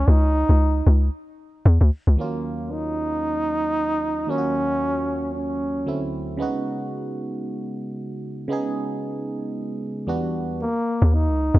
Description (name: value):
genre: amapiano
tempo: 114 BPM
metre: 4/4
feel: swing 58% on 16ths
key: Eb minor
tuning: A4 = 440 Hz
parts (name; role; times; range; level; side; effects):
- mellow trombone; melody; 0.0-6.1, 10.6-11.6 s; Bb3 to Eb4; -24 LUFS; equal; digital delay
- hollow log drum bass; bass; 0.0-2.2, 11.0-11.6 s; Db2 to Fb2; -16 LUFS; equal; none
- barking FM electric piano; accompaniment; 2.2-10.6 s; D2 to Ab4; -28 LUFS; right 2 dB; chorus
room: studio ambience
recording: dark, warm production, nothing above 10.7 kHz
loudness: -21 LUFS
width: side -16 dB against mid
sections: 0.0-2.2 A section; 2.2-10.6 B section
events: drop 0.0-2.2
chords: 0.0 Dbsus2; 1.7 Dbm; 2.2 Ebm7; 5.9 D9; 6.4 Db9sus4; 10.1 Em7; 10.6 Eb7(no3)